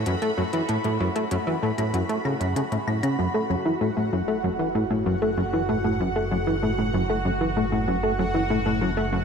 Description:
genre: ambient, sequencer-driven space music.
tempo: 96 BPM.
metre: 4/4.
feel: straight.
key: F# minor.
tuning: A4 = 440 Hz.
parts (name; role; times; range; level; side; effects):
plucky analog bass; riff; 0.0-9.2 s; F#2 to A3; -23 LUFS; equal; analog chorus, ping-pong delay.
bubbling stepped-filter texture; texture; 0.0-9.2 s; F#4 to B5; -30 LUFS; right 2 dB; chorus, built-in reverb.
electronic hi-hat and claves; percussion; 0.1-3.2 s; none; -40 LUFS; left 5 dB; ping-pong delay.
analog drone; bass; 4.5-9.2 s; F#1; -31 LUFS; right 1 dB; chorus.
room: wet lush hall reverb, RT60 2.6 s.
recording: dreamy mix soaked in reverb.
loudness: -22 LUFS.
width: side -6 dB against mid.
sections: 0.0-3.2 A section; 3.2-9.2 B section.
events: none.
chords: 0.0 F#m.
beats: 0.06 | 0.69 1.31 1.94 2.56 | 3.19 3.81 4.44 5.06 | 5.69 6.31 6.94 7.56 | 8.19 8.81.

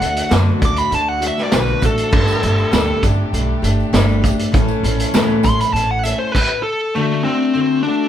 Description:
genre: folk rock and heartland rock.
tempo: 100 BPM.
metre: 4/4.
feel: straight.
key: unclear.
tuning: A4 = 440 Hz.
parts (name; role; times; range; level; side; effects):
bluesy overdriven lead guitar; melody; 0.0-8.1 s; A3 to D6; -18 LUFS; left 1 dB; distortion.
picked steel-string acoustic guitar; accompaniment; 0.0-8.1 s; A2 to A4; -21 LUFS; left 2 dB; none.
warm chamber string section; sustained chords; 0.0-8.1 s; A3 to A4; -29 LUFS; equal; none.
upright bass; bass; 0.0-6.1 s; G1 to F#2; -19 LUFS; right 1 dB; none.
vintage drum kit; drums; 0.0-6.5 s; crash cymbal, hi-hat, kick drum, snare drum; -18 LUFS; equal; none.
tambourine; percussion; 0.2-6.2 s; none; -37 LUFS; right 9 dB; none.
room: moderate studio ambience, RT60 0.5 s.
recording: band playing live in one room.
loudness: -14 LUFS.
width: side -10 dB against mid.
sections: 0.0-6.9 A section; 6.9-8.1 B section.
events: lead electric guitar solo 0.0-6.9.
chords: 0.0 D; 2.1 Gsus2; 4.5 A; 6.9 D.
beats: 0.32 0.92 1.53 | 2.13 2.73 3.33 3.94 | 4.54 5.14 5.74 6.34 | 6.94 7.54.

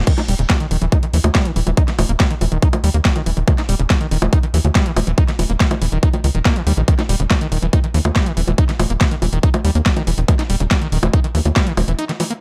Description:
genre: psychedelic trance.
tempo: 141 BPM.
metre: 4/4.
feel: straight.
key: unclear.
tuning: A4 = 441 Hz.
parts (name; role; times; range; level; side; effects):
tight sequencer bass; bass; 0.0-11.9 s; Eb1 to Eb2; -20 LUFS; equal; none.
screaming distorted acid line; riff; 0.1-12.3 s; Db3 to Eb4; -26 LUFS; equal; distortion, chorus, sidechain pumping, delay.
drum and bass drum kit; drums; 0.1-12.4 s; bongos, crash cymbal, hi-hat, snare drum; -24 LUFS; equal; overdrive.
electronic kick drum; drums; 0.1-11.6 s; none; -18 LUFS; equal; none.
room: little or no reverb.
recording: dark, warm production.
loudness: -17 LUFS.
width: mono.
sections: 0.0-12.4 A section.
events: filter sweep on acid bass 0.0-12.4; break 12.0-12.4.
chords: 0.0 Eb5.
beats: | 0.07 0.50 0.92 1.35 | 1.77 2.20 2.62 3.05 | 3.48 3.90 4.33 4.75 | 5.18 5.60 6.03 6.45 | 6.88 7.30 7.73 8.16 | 8.58 9.01 9.43 9.86 | 10.28 10.71 11.13 11.56 | 11.99.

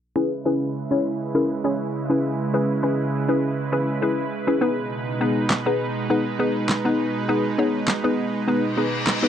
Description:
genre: dance-pop.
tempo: 101 BPM.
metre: 4/4.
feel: straight.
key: unclear.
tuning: A4 = 440 Hz.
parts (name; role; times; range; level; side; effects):
hollow square pluck; accompaniment; 0.2-9.3 s; B3 to C#5; -22 LUFS; left 2 dB; chorus, low-pass filter.
supersaw pad; sustained chords; 0.2-9.3 s; B2 to B4; -25 LUFS; right 3 dB; low-pass filter.
electronic snare drum and handclaps; drums; 5.5-9.2 s; none; -22 LUFS; right 1 dB; none.
reverse cymbal; sound effects; 8.7-9.3 s; none; -27 LUFS; left 5 dB; none.
room: light reverb.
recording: dry, close 1970s-style studio recording.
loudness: -20 LUFS.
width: side -9 dB against mid.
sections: 0.2-9.3 A section.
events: filter sweep 0.2-9.3; reverse cymbal 8.7-9.3.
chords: 0.2 C#m7; 4.6 G#m.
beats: | 0.16 0.75 1.35 1.94 | 2.54 3.13 3.73 4.32 | 4.91 5.51 6.10 6.70 | 7.29 7.88 8.48 9.07.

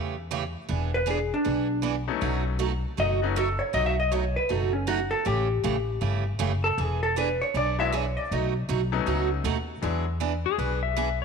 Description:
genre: country, western swing.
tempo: 158 BPM.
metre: 4/4.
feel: swing 63% on 8ths.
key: E major.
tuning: A4 = 442 Hz.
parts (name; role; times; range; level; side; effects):
picked steel-string acoustic guitar; accompaniment; 0.0-11.1 s; B2 to G#4; -30 LUFS; right 10 dB; none.
upright bass; bass; 0.0-11.2 s; E1 to E2; -29 LUFS; left 1 dB; none.
hollow-body jazz guitar; melody; 0.9-8.5 s; C#4 to E5; -27 LUFS; left 1 dB; none.
bright upright piano; accompaniment; 2.1-3.4, 7.8-10.0 s; F#3 to E4; -32 LUFS; left 11 dB; none.
clean lap steel guitar; second line; 10.5-11.2 s; G#4 to E5; -27 LUFS; left 12 dB; none.
room: moderate echo chamber reverb, RT60 2.2 s.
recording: 1960s-style stereo with parts hard left and right.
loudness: -24 LUFS.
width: side -5 dB against mid.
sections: 0.0-9.8 A section; 9.8-11.2 A section.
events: hollow-body jazz guitar solo 0.0-9.8; electric slide guitar solo 9.8-11.2.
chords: 0.0 A7; 0.7 E7; 2.2 B9; 5.3 A7; 6.8 E7; 8.3 B9; 9.8 E9.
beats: 0.31 | 0.69 1.07 1.45 1.83 | 2.21 2.60 2.98 3.36 | 3.74 4.12 4.50 4.88 | 5.26 5.64 6.02 6.40 | 6.78 7.16 7.54 7.92 | 8.30 8.69 9.07 9.45 | 9.83 10.21 10.59 10.97.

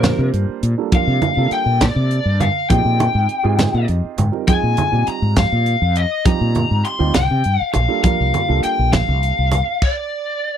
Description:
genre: electric jazz fusion.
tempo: 68 BPM (dotted quarters).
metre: 6/8.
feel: straight.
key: C minor.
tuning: A4 = 440 Hz.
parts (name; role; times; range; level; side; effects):
lead guitar through a small cranked amp; melody; 0.0-10.6 s; Bb4 to C6; -20 LUFS; left 3 dB; overdrive, slapback echo.
dark grand piano; accompaniment; 0.0-9.6 s; G3 to G5; -25 LUFS; right 12 dB; none.
mellow fretless electric bass; bass; 0.0-9.6 s; Bb1 to C3; -17 LUFS; left 1 dB; none.
tight funk drum kit; drums; 0.0-10.0 s; crash cymbal, hi-hat, kick drum, snare drum; -19 LUFS; equal; none.
congas; percussion; 0.0-9.7 s; none; -22 LUFS; right 3 dB; none.
room: little or no reverb.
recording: dry, close 1970s-style studio recording.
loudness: -15 LUFS.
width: side -9 dB against mid.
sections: 0.0-10.6 A section.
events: grand piano fill 3.6-4.5; stop 9.8-10.6.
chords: 0.0 C13sus4; 2.7 Bb13sus4; 7.2 C13sus4; 9.8 N.C..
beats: 0.04 | 0.93 1.81 | 2.70 3.59 | 4.48 5.37 | 6.26 7.15 | 8.04 8.93 | 9.82.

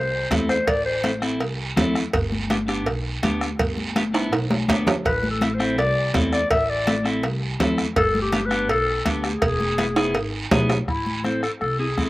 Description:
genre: latin, cumbia.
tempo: 165 BPM.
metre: 4/4.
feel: straight.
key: A minor.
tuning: A4 = 438 Hz.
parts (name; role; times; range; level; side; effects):
growling clarinet; second line; 0.0-1.2, 5.1-12.1 s; E4 to E5; -23 LUFS; left 2 dB; slapback echo.
upright bass; bass; 0.0-12.1 s; E1 to E2; -28 LUFS; equal; none.
clean electric guitar; accompaniment; 0.3-12.1 s; B3 to A4; -26 LUFS; equal; slapback echo.
bombo; percussion; 0.3-12.1 s; none; -29 LUFS; equal; none.
congas; percussion; 0.3-12.1 s; none; -26 LUFS; left 1 dB; none.
cowbell and timbales; percussion; 0.3-10.8 s; none; -25 LUFS; right 3 dB; none.
guiro; percussion; 0.3-12.1 s; none; -33 LUFS; right 4 dB; none.
room: little or no reverb.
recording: recorded outdoors, with no room sound.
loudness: -20 LUFS.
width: side -18 dB against mid.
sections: 0.0-10.9 A section; 10.9-12.1 B section.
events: clarinet solo 0.0-10.9, 10.9-12.1; drum fill 4.1-5.1, 10.0-10.9.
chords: 0.0 Am; 2.1 G; 5.1 Am; 8.0 G; 9.4 E; 10.9 Am.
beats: 0.31 | 0.68 1.04 1.41 1.77 | 2.13 2.50 2.86 3.23 | 3.59 3.96 4.32 4.69 | 5.05 5.42 5.78 6.14 | 6.51 6.87 7.24 7.60 | 7.96 8.33 8.69 9.06 | 9.42 9.79 10.15 10.52 | 10.88 11.24 11.61 11.98.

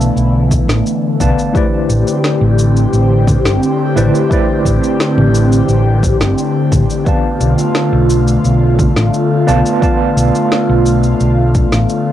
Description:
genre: sunset chillout.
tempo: 87 BPM.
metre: 4/4.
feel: straight.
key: unclear.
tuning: A4 = 440 Hz.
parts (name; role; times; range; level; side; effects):
tine electric piano; accompaniment; 0.0-12.1 s; A3 to A5; -19 LUFS; moving between left 4 dB and right 4 dB; medium stereo tremolo, auto-pan, low-pass filter, cassette tape, tape echo.
airy breathy pad; sustained chords; 0.0-12.1 s; D3 to G4; -15 LUFS; left 1 dB; chorus, phaser, cassette tape.
hollow-body short-scale fingered electric bass; bass; 0.0-11.8 s; G1 to B1; -13 LUFS; equal; none.
electronic shaker, snare drum and congas; drums; 0.0-12.0 s; none; -19 LUFS; right 1 dB; none.
electronic kick drum; drums; 0.5-11.7 s; none; -16 LUFS; equal; none.
room: moderate studio ambience, RT60 0.5 s.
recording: home recording on cassette.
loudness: -10 LUFS.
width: side -12 dB against mid.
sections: 0.0-12.1 A section.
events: none.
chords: 0.0 Bm7b5; 1.5 Am11; 7.1 Bm7b5.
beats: 0.17 0.86 | 1.55 2.24 2.93 3.62 | 4.30 5.00 5.68 6.37 | 7.06 7.75 8.44 9.13 | 9.82 10.51 11.20 11.89.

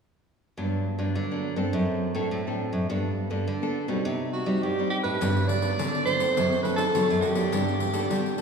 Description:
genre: samba and choro.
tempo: 104 BPM.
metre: 4/4.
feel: straight.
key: G major.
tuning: A4 = 437 Hz.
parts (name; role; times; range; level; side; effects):
nylon-string guitar; accompaniment; 0.6-8.4 s; G2 to A4; -30 LUFS; equal; none.
nylon-string guitar; bass; 0.6-8.4 s; F#2 to G3; -28 LUFS; right 1 dB; none.
clear soprano saxophone; melody; 4.3-8.4 s; F#4 to D5; -26 LUFS; right 2 dB; none.
pandeiro; percussion; 5.2-8.4 s; none; -31 LUFS; left 2 dB; none.
room: wet scoring stage reverb, RT60 1.9 s.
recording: recorded in a church or concert hall, small room ambience.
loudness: -24 LUFS.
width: side -6 dB against mid.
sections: 0.6-5.2 A section; 5.2-8.4 B section.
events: none.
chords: 0.6 Gmaj7; 1.7 D7/F#; 2.9 Gadd9; 4.1 Cm; 5.2 Gmaj7; 6.4 D7/F#; 7.5 Gadd9.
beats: | 0.58 1.16 1.74 2.32 | 2.90 3.47 4.05 4.63 | 5.21 5.79 6.37 6.95 | 7.52 8.10.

